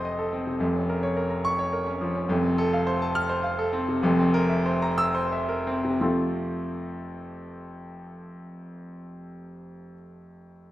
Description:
classical, virtuoso piano study; 57-72 BPM (dotted quarters); 6/8; rubato; F major; A4 = 439 Hz
warm grand piano; solo; 0.0-10.7 s; F1 to F6; -25 LUFS; equal
wet recital hall reverb, RT60 1.7 s; -23 LUFS; side -15 dB against mid
0.0-6.0 A section; 6.0-10.0 B section
slowing down 1.5-6.0
0.0 F7; 0.6 Bbm/F; 2.3 F; 4.0 C7/F; 6.0 F

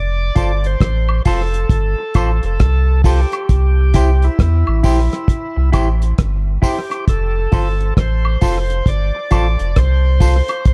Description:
roots reggae; 67 BPM; 4/4; swing 63% on 16ths; F major; A4 = 440 Hz
overdriven tonewheel organ; melody; 0.0-10.7 s; E4 to D5; -26 LUFS; equal; slow rotary speaker, dub echo
warm sub bass; bass; 0.0-10.7 s; F1 to E2; -18 LUFS; equal
semi-hollow electric guitar; accompaniment; 0.4-10.5 s; E4 to C5; -26 LUFS; equal; spring reverb, dub echo
cloth-damped thuddy drum kit; drums; 0.4-10.7 s; hi-hat, kick drum, rim click; -18 LUFS; equal
tambourine and woodblock; percussion; 0.4-10.6 s; -30 LUFS; equal
little or no reverb; dark, warm production; -16 LUFS; mono
0.0-10.7 A section
0.0 F; 3.5 C; 7.1 F

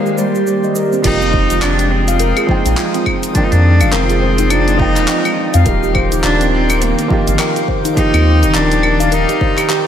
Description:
organic downtempo; 104 BPM; 4/4; swing 59% on 16ths; F dorian; A4 = 439 Hz
warm cello; melody; 0.0-9.9 s; G3 to Eb4; -18 LUFS; left 1 dB; diffuse ambient delay
felt-muted upright piano; accompaniment; 0.0-9.9 s; Eb3 to G5; -22 LUFS; right 4 dB; vintage 12-bit sampler grit, sidechain pumping, tape echo
airy breathy pad; sustained chords; 0.0-9.9 s; Eb3 to Eb6; -22 LUFS; right 1 dB; chorus, sidechain pumping
handpan; arpeggios; 0.0-9.9 s; C4 to F5; -19 LUFS; equal; tape echo
deep house drum kit; drums; 0.1-9.8 s; cabasa, claves, crash cymbal, handclaps, hi-hat; -21 LUFS; left 1 dB
warm sub bass; bass; 1.0-9.3 s; Eb1 to F2; -15 LUFS; equal; sidechain pumping
electronic kick drum; drums; 1.0-9.5 s; -18 LUFS; equal
moderate lush hall reverb, RT60 2.6 s; dreamy mix soaked in reverb; -11 LUFS; side -9 dB against mid
0.0-1.0 A section; 1.0-9.9 B section
filter sweep on handpan 0.0-1.0; filter sweep on analog synth pad 0.0-1.0
0.0 Ebmaj7; 1.0 Fm9; 5.7 Ebmaj7

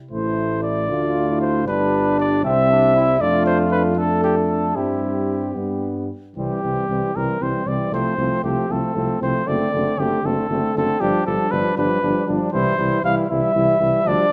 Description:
classical, brass quintet; 78 BPM (dotted quarters); 6/8; rubato; C major; A4 = 441 Hz
mellow trumpet; melody; 0.1-14.3 s; E4 to F5; -24 LUFS; equal
warm French horn; accompaniment; 0.1-14.3 s; G3 to F4; -28 LUFS; equal
warm trombone; accompaniment; 0.1-14.3 s; D3 to A3; -29 LUFS; equal
mellow tuba; bass; 0.1-14.2 s; F#1 to G2; -27 LUFS; equal
warm flugelhorn; second line; 0.9-14.3 s; C4 to A4; -29 LUFS; equal
moderate recital hall reverb, RT60 1.3 s; -20 LUFS; mono
0.0-6.4 A section; 6.4-14.3 B section
0.1 Am; 0.9 Dm; 1.7 G; 2.4 C; 3.2 Dm/F; 4.8 C/G; 5.6 G; 6.4 C; 7.9 F/C; 9.5 D7/F#; 11.0 G7; 12.5 C

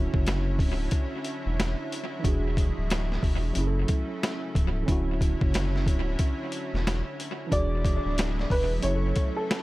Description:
hip hop, boom-bap hip-hop; 91 BPM; 4/4; swing 62% on 16ths; A4 = 436 Hz
tine electric piano; accompaniment; 0.0-9.6 s; D3 to A4; -34 LUFS; right 2 dB; medium stereo tremolo, high-pass filter, low-pass filter
lush unison pad; sustained chords; 0.0-9.6 s; C#3 to E4; -36 LUFS; equal; chorus, high-pass filter, low-pass filter
saturated sub bass; bass; 0.0-9.1 s; C#1 to F#1; -28 LUFS; equal
boom bap sampler-style drum kit; drums; 0.1-9.6 s; hi-hat, kick drum, snare drum; -27 LUFS; equal; tape echo
dark upright piano; melody; 7.5-9.6 s; A4 to D5; -30 LUFS; equal; high-pass filter, low-pass filter, tape echo
little or no reverb; echo-heavy mix; -24 LUFS; side -18 dB against mid
0.0-9.6 A section
0.0 Dmaj9; 2.2 E9; 3.6 F#m7; 4.9 Dmaj9; 7.5 E9; 8.8 F#m7

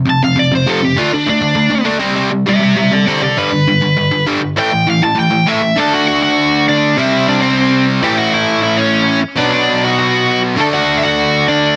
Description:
punk; 200 BPM; 4/4; straight; D major; A4 = 442 Hz
distorted electric guitar; riff; 0.0-11.8 s; F2 to D4; -16 LUFS; equal; distortion
biting overdriven guitar; melody; 0.1-11.8 s; C4 to A5; -16 LUFS; equal; digital delay
light reverb; dense, heavily limited modern master; -13 LUFS; mono
0.0-5.8 A section; 5.8-11.8 B section
overdriven electric guitar solo 0.0-5.8
0.0 F5; 1.0 D5; 2.0 C5; 3.4 G; 4.6 A5; 5.8 D; 7.0 C; 8.0 A; 9.4 Bm; 10.6 D

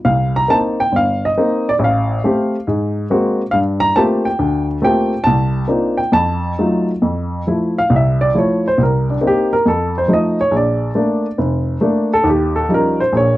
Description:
solo jazz; 138 BPM; 4/4; swing 66% on 8ths, rubato; F major from 7.0 s; A4 = 441 Hz
dark baby grand piano; solo; 0.0-13.4 s; F1 to Bb5; -14 LUFS; equal
little or no reverb; dry, close 1970s-style studio recording; -14 LUFS; side -16 dB against mid
0.0-7.0 A section; 7.0-13.4 B section
grand piano solo 7.0-13.4
0.0 Cm7; 1.8 Fadd9/A; 2.7 Ab9; 3.5 Gm11; 5.3 Cm11; 6.1 F7b9; 7.0 Fmaj7; 8.8 Cm7; 9.7 F7; 10.5 Bbmaj7; 12.3 Eb9

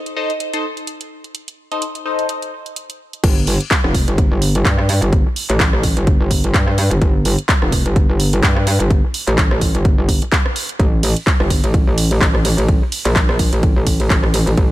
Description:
bass house; 127 BPM; 4/4; swing 56% on 16ths; A4 = 440 Hz
house drum kit; drums; 0.1-14.7 s; crash cymbal, handclaps, hi-hat, ride cymbal, rim click; -21 LUFS; right 1 dB; overdrive
band-passed chord stab; stabs; 0.2-2.3 s; Eb4 to Eb5; -22 LUFS; left 2 dB; phaser, sidechain pumping, ping-pong delay
metallic wobble bass; bass; 3.2-14.7 s; F1 to G2; -16 LUFS; equal; chorus, overdrive, sidechain pumping
electronic kick drum; drums; 3.2-14.7 s; -15 LUFS; equal; overdrive
digital ambience; -13 LUFS; side -15 dB against mid
0.0-3.2 A section; 3.2-14.7 B section
drop 3.2-14.7
0.0 Adim; 3.2 N.C.

